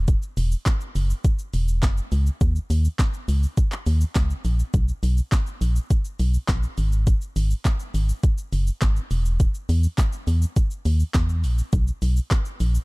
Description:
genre	dance-pop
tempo	103 BPM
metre	4/4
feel	straight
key	unclear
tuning	A4 = 440 Hz
part	organ-like FM bass	bass	0.0-12.8 s	E1 to E2	-20 LUFS	equal	sidechain pumping
part	smooth R&B drum kit	drums	0.1-12.8 s	handclaps, hi-hat, kick drum, shaker, snare drum	-23 LUFS	equal	none
room	little or no reverb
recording	dark, warm production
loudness	-20 LUFS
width	side -27 dB against mid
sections	0.0-12.8 A section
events	none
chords	none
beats	| 0.08 0.66 1.24 1.83 | 2.41 2.99 3.57 4.16 | 4.74 5.32 5.90 6.49 | 7.07 7.65 8.23 8.82 | 9.40 9.98 10.56 11.15 | 11.73 12.31

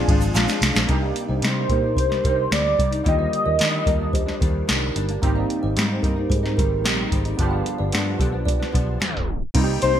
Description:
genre	indie pop, bedroom pop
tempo	111 BPM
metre	4/4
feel	straight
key	unclear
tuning	A4 = 441 Hz
part	warm velvety synth lead	melody	0.0-4.9, 9.8-10.0 s	F4 to Eb5	-23 LUFS	equal	analog chorus, ping-pong delay
part	nylon-string guitar	accompaniment	0.0-10.0 s	G2 to Eb4	-28 LUFS	left 3 dB	analog chorus, vibrato effect
part	warbly lo-fi synth keys	accompaniment	0.0-10.0 s	D3 to F5	-29 LUFS	right 5 dB	chorus
part	vintage muted fingered electric bass	bass	0.0-10.0 s	G1 to Eb3	-25 LUFS	equal	none
part	soft vintage rhythm box	drums	0.1-9.9 s	crash cymbal, hi-hat, kick drum, ride cymbal, snare drum	-22 LUFS	equal	gated reverb
part	tube shaker	percussion	0.2-0.9 s	none	-39 LUFS	right 8 dB	none
part	kalimba	second line	1.0-8.9 s	G4 to F5	-30 LUFS	right 5 dB	wide subtle chorus, ping-pong delay
room	light reverb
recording	bright 1980s-style digital production, tape stop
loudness	-19 LUFS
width	side -10 dB against mid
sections	0.9-9.6 A section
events	synth keys fill 0.1-0.9; drum fill 0.3-0.9; tape stop 9.0-9.6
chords	0.0 Bb7; 0.9 Cm7; 3.1 Ebmaj7; 5.2 Abmaj7; 7.4 G7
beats	0.35 | 0.89 1.43 1.97 2.52 | 3.06 3.60 4.14 4.68 | 5.22 5.76 6.30 6.84 | 7.39 7.93 8.47 9.01 | 9.55

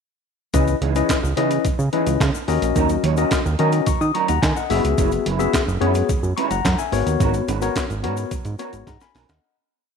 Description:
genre	early-eighties boogie funk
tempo	108 BPM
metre	4/4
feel	straight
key	C# dorian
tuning	A4 = 440 Hz
part	tine electric piano	accompaniment	0.5-9.6 s	A#3 to D#6	-22 LUFS	left 11 dB	auto-pan
part	mellow electric guitar	riff	0.5-9.3 s	E3 to C#5	-26 LUFS	right 14 dB	ensemble chorus
part	fat analog bass	bass	0.5-9.4 s	F#1 to D#3	-21 LUFS	right 2 dB	none
part	breakbeat sampler-style drum kit	drums	0.5-9.4 s	handclaps, hi-hat, kick drum, snare drum	-24 LUFS	right 2 dB	none
part	tube shaker	percussion	0.5-9.4 s	none	-38 LUFS	left 12 dB	none
room	light reverb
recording	1960s-style stereo with parts hard left and right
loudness	-18 LUFS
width	side -6 dB against mid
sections	0.5-9.4 verse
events	fade-out 7.2-9.4; drum fill 8.9-9.4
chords	0.5 C#m9; 2.5 D#m7; 4.7 F#9sus4; 6.9 G#m11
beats	| 0.54 1.09 1.65 2.20 | 2.76 3.31 3.87 4.42 | 4.98 5.54 6.09 6.65 | 7.20 7.76 8.31 8.87

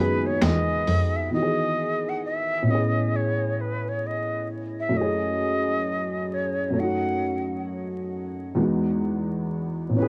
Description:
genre	lo-fi hip hop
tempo	66 BPM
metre	4/4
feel	swing 63% on 16ths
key	E major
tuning	A4 = 440 Hz
part	mellow jazz flute	melody	0.0-10.1 s	B4 to F#5	-30 LUFS	equal	tape echo
part	dark upright piano	accompaniment	0.0-10.1 s	E2 to G#4	-28 LUFS	equal	cassette tape
part	dark analog pad	sustained chords	0.0-1.3 s	C#3 to G#4	-39 LUFS	equal	none
part	rich cello	bass	0.0-1.2 s	E2 to F#2	-27 LUFS	equal	none
part	boom bap sampler-style drum kit	drums	0.4-1.1 s	finger snaps, hi-hat, snare drum	-29 LUFS	equal	none
part	finger snap	percussion	0.4-0.7 s	none	barely audible	none	none
room	moderate small room reverb, RT60 0.6 s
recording	worn, warbling old tape, cassette tape, vinyl crackle, warbly pitch drift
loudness	-25 LUFS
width	mono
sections	0.0-1.3 A section; 1.3-10.1 B section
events	break 0.0-1.3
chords	0.0 Emaj7; 2.7 Amaj9; 5.0 F#m7; 6.8 F#m6; 8.6 Emaj7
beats	0.41 | 1.31 2.22 3.13 4.04 | 4.95 5.86 6.77 7.68 | 8.59 9.49

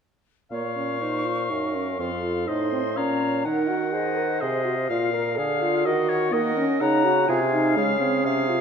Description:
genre	quick classical-period movement for wind quintet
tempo	124 BPM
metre	3/4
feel	straight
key	Bb minor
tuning	A4 = 440 Hz
part	concert flute	melody	0.5-8.5 s	Eb5 to Db6	-30 LUFS	left 7 dB	none
part	clear oboe	second line	0.5-8.6 s	Db5 to Ab5	-30 LUFS	left 4 dB	none
part	clear clarinet	accompaniment	0.5-8.6 s	Ab4 to Db5	-31 LUFS	right 7 dB	none
part	mellow French horn	accompaniment	0.5-8.6 s	Ab3 to Bb4	-26 LUFS	equal	none
part	mellow bassoon	bass	0.5-8.6 s	F2 to Eb3	-26 LUFS	right 2 dB	none
room	moderate scoring stage reverb, RT60 1.9 s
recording	none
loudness	-21 LUFS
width	side -6 dB against mid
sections	0.5-8.6 A section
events	none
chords	0.5 Bbm; 2.0 F7; 3.0 Bbm; 3.5 Ebm; 4.9 Bb7; 5.9 Ebm; 7.3 Ab/C; 7.8 Db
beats	| 0.51 1.01 1.51 | 1.99 2.48 2.97 | 3.45 3.94 4.42 | 4.89 5.37 5.85 | 6.33 6.81 7.29 | 7.77 8.25

